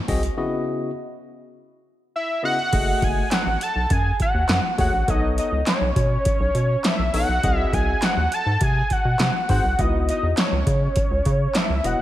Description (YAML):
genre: early-eighties boogie funk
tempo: 102 BPM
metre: 4/4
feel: straight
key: F# dorian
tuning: A4 = 441 Hz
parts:
  - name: barky tine electric piano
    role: accompaniment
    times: 0.1-12.0 s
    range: C#3 to D#5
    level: -28 LUFS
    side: left 3 dB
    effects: none
  - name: rubbery square bass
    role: bass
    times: 0.1-12.0 s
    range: E1 to C#3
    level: -23 LUFS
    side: equal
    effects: none
  - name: electro analog drum machine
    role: drums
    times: 0.1-12.0 s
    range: crash cymbal, handclaps, hi-hat, kick drum, snare drum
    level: -23 LUFS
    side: equal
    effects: overdrive
  - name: fat analog lead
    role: melody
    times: 2.2-12.0 s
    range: C#5 to A5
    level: -23 LUFS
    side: equal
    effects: chorus, slapback echo
room: moderate scoring stage reverb, RT60 2.0 s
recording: big arena sound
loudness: -19 LUFS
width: side -13 dB against mid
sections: 0.0-2.7 A section; 2.7-12.0 B section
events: break 0.4-2.7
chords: 0.4 C#m11; 2.7 F#m69; 5.1 B9; 7.4 G#7/B#; 9.8 C#m11